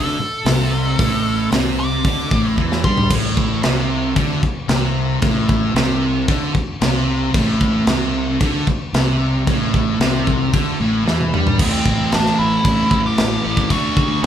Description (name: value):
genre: hard rock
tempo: 113 BPM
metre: 4/4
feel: straight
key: A minor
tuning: A4 = 440 Hz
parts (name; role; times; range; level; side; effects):
- nasal lead guitar with a parked wah; melody; 0.0-3.1, 11.6-14.3 s; C4 to D6; -22 LUFS; equal; overdrive
- sludgy distorted guitar; riff; 0.0-14.3 s; A2 to D4; -22 LUFS; left 6 dB; overdrive
- sludgy distorted guitar; riff; 0.0-14.3 s; A2 to D4; -21 LUFS; right 7 dB; overdrive
- fuzz fingered electric bass; bass; 0.0-14.3 s; A1 to G2; -24 LUFS; equal; overdrive
- tight metal drum kit; drums; 0.5-14.3 s; crash cymbal, hi-hat, kick drum, snare drum, toms; -20 LUFS; equal; none
room: moderate large studio reverb, RT60 1.1 s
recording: band playing live in one room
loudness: -15 LUFS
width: side -9 dB against mid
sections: 0.0-3.1 A section; 3.1-11.6 B section; 11.6-14.3 C section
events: lead electric guitar solo 0.0-3.1; drum fill 2.6-3.1, 11.1-11.6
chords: 0.0 Am; 13.7 D